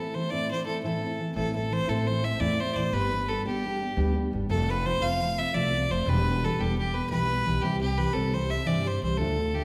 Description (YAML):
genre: celtic folk, Celtic slip jig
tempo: 115 BPM (dotted quarters)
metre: 9/8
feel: straight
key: A minor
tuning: A4 = 440 Hz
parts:
  - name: clear fiddle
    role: melody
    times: 0.0-9.6 s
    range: G4 to F5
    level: -32 LUFS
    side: equal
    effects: none
  - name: fingerpicked steel-string acoustic guitar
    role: accompaniment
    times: 0.0-9.6 s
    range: D2 to G4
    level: -32 LUFS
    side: equal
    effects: none
  - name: upright bass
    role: bass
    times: 1.4-9.6 s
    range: E1 to G2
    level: -32 LUFS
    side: equal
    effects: none
room: wet recital hall reverb, RT60 1.4 s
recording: recorded in a church or concert hall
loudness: -27 LUFS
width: mono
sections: 0.0-1.4 A section; 1.4-9.6 A section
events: none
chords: 0.0 Am; 2.9 G; 4.5 F; 6.1 Em; 7.6 C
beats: 0.31 0.83 | 1.36 1.88 2.40 | 2.93 3.45 3.97 | 4.50 5.02 5.54 | 6.06 6.58 7.11 | 7.63 8.15 8.67 | 9.19